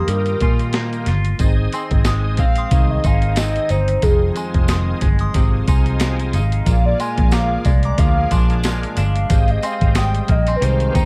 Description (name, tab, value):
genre	indie pop, bedroom pop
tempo	91 BPM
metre	4/4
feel	swing 55% on 16ths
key	Ab lydian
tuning	A4 = 440 Hz
part	warbly nostalgic lead	melody	0.0-11.0 s	Ab4 to Ab5	-26 LUFS	equal	tremolo, subtle chorus, tape echo
part	soft synth bell	second line	0.0-11.1 s	G5 to Eb6	-33 LUFS	equal	subtle chorus, tape echo
part	clean electric guitar	accompaniment	0.0-11.1 s	F2 to F4	-29 LUFS	equal	lush chorus, vibrato effect
part	bright tonewheel organ	accompaniment	0.1-11.1 s	Ab3 to F5	-31 LUFS	equal	overdrive, chorus vibrato, slow rotary speaker, cassette tape
part	vintage muted fingered electric bass	bass	0.1-11.1 s	F1 to Bb2	-21 LUFS	equal	none
part	boom bap sampler-style drum kit	drums	0.1-11.1 s	hi-hat, kick drum, snare drum	-21 LUFS	equal	none
part	tambourine	percussion	1.4-11.1 s	none	-39 LUFS	equal	none
room	little or no reverb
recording	dark, warm production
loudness	-17 LUFS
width	mono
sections	0.0-11.1 A section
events	soft synth lead solo 0.0-11.1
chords	0.0 Ebadd9; 1.4 Ab; 4.0 Fm7; 6.7 Bb7; 9.3 Abmaj7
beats	0.08 0.74 | 1.40 2.06 2.72 3.38 | 4.04 4.69 5.35 6.01 | 6.67 7.33 7.99 8.65 | 9.30 9.96 10.62